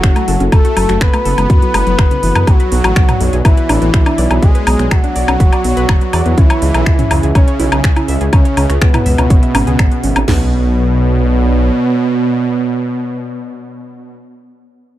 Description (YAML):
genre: melodic techno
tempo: 123 BPM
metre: 4/4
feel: straight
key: B dorian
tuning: A4 = 440 Hz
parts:
  - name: expressive synth lead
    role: melody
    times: 0.0-14.2 s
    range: B3 to B4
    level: -18 LUFS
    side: right 1 dB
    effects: chorus, sidechain pumping, tape echo
  - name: soft supersaw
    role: second line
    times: 0.0-14.2 s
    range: B2 to B3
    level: -22 LUFS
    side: equal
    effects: sidechain pumping, ping-pong delay
  - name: dark analog pad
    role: sustained chords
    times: 0.0-14.2 s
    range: B3 to E5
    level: -25 LUFS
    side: right 1 dB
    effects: chorus, sidechain pumping
  - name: warbly dusty pluck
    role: arpeggios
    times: 0.0-10.5 s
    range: C#3 to E6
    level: -22 LUFS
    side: equal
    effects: chorus, cassette tape, sidechain pumping, ping-pong delay
  - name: dark detuned saw bass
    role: bass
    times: 0.0-11.7 s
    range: F#1 to F#2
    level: -15 LUFS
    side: equal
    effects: sidechain pumping
  - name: house drum kit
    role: drums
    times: 0.0-10.4 s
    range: crash cymbal, kick drum, snare drum, toms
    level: -10 LUFS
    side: equal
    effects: none
  - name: house drum kit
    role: drums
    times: 0.0-10.3 s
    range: finger snaps, hi-hat, toms, woodblock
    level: -19 LUFS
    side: left 1 dB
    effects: none
room: digital ambience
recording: none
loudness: -10 LUFS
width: side -14 dB against mid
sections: 0.0-10.3 A section; 10.3-14.2 B section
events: drop 0.0-10.3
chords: 0.0 F#m7; 2.5 Bmadd9; 6.4 C#m; 10.3 Bmadd9